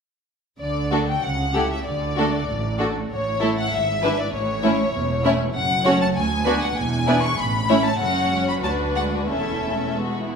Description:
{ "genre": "quick classical-period movement for string orchestra", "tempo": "97 BPM", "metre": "2/4", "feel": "rubato", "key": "D major, A major from 5.6 s", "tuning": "A4 = 438 Hz", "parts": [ { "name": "clear studio violin section", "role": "melody", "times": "0.6-9.9 s", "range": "C#5 to C#6", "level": "-24 LUFS", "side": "left 3 dB", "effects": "none" }, { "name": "clear studio double bass section", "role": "bass", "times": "0.6-10.4 s", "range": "E1 to D2", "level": "-29 LUFS", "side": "right 2 dB", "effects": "none" }, { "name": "rich symphonic cello section", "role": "bass", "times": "0.6-10.4 s", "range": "D2 to D3", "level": "-28 LUFS", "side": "right 4 dB", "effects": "none" }, { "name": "rich studio violin section", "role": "second line", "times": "0.9-10.4 s", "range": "E4 to C#5", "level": "-25 LUFS", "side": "left 2 dB", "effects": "none" }, { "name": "rich symphonic viola section", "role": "accompaniment", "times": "0.9-10.4 s", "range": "E3 to E4", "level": "-26 LUFS", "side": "right 1 dB", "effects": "none" } ], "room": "wet recital hall reverb, RT60 1.7 s", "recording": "minimal, uncompressed stereo recording", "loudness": "-19 LUFS", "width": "side -6 dB against mid", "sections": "0.6-10.4 A section", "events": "none", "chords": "0.6 D; 1.2 A7/C#; 1.9 D; 3.1 A; 3.7 E7/G#; 4.3 A; 5.6 F#m; 6.2 Bm/D; 6.8 E7; 7.4 A; 8.0 F#5; 8.6 Bm/D; 9.3 A/E" }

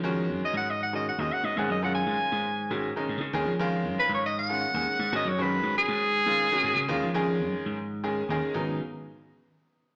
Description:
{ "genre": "electric jazz fusion", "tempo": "236 BPM (eighths)", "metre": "7/8", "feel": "straight", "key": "unclear", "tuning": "A4 = 439 Hz", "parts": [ { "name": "bright concert grand piano", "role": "accompaniment", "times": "0.0-8.8 s", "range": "C#3 to G#5", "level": "-33 LUFS", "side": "equal", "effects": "none" }, { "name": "vintage slap bass", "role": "bass", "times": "0.0-8.8 s", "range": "G#1 to E#3", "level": "-34 LUFS", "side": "equal", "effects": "none" }, { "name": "warm soprano saxophone", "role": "melody", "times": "0.4-7.3 s", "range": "G#4 to G#5", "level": "-29 LUFS", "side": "equal", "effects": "none" } ], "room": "wet large studio reverb, RT60 1.4 s", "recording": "band playing live in one room, small speaker sound", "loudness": "-28 LUFS", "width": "mono", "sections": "0.0-8.6 A section; 8.6-10.0 B section", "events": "soprano saxophone solo 0.0-8.6; grand piano fill 7.8-8.6", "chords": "0.0 G#7sus4; 8.6 G#m" }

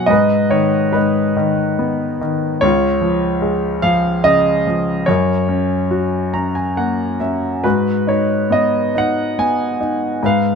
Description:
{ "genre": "classical, lyrical solo piano", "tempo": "71 BPM", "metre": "3/4", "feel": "uneven beats, rubato", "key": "unclear", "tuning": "A4 = 437 Hz", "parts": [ { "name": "clear grand piano", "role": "solo", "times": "0.0-10.6 s", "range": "C#2 to A#5", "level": "-14 LUFS", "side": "equal", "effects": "none" } ], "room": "light reverb", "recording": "close, detailed microphones", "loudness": "-14 LUFS", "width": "side -6 dB against mid", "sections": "0.0-10.6 A section", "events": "grand piano fill 5.9-7.7", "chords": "0.1 G#m; 2.6 C#; 5.1 F#; 7.7 G#m7" }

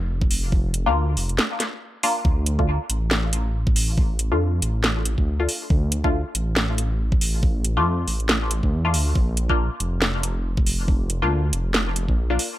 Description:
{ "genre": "deep dubstep", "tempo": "139 BPM", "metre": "4/4", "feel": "swing 57% on 16ths, half-time", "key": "D minor", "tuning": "A4 = 439 Hz", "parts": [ { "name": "dark detuned saw bass", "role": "bass", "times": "0.0-12.4 s", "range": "F1 to F2", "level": "-23 LUFS", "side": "equal", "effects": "none" }, { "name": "electronic kick drum", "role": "drums", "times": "0.2-12.2 s", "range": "none", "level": "-21 LUFS", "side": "equal", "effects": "none" }, { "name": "garage drum kit", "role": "drums", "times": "0.3-12.5 s", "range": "hi-hat, snare drum", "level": "-23 LUFS", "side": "right 1 dB", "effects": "none" }, { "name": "filtered dub chord stab", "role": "stabs", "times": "0.9-12.5 s", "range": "A3 to F4", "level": "-26 LUFS", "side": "left 3 dB", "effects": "phaser, wide subtle chorus, cassette tape, dub echo" } ], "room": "digital ambience", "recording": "none", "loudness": "-20 LUFS", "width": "side -14 dB against mid", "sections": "0.0-12.6 A section", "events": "break 1.4-2.2", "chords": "0.0 Bb; 2.2 Dm; 9.2 Bb" }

